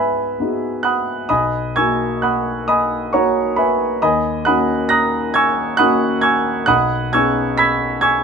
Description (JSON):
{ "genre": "classical, impressionist solo piano", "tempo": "45 BPM (dotted quarters)", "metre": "6/8", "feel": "rubato", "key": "unclear", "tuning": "A4 = 440 Hz", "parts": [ { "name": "warm grand piano", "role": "solo", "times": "0.0-8.2 s", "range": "B1 to B6", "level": "-15 LUFS", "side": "right 1 dB", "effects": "none" } ], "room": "light reverb", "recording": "close, detailed microphones", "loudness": "-15 LUFS", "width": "side -6 dB against mid", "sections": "0.0-8.2 A section", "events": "none", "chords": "0.0 G#m7; 1.3 Bmaj7; 4.0 D#m7; 6.7 B69" }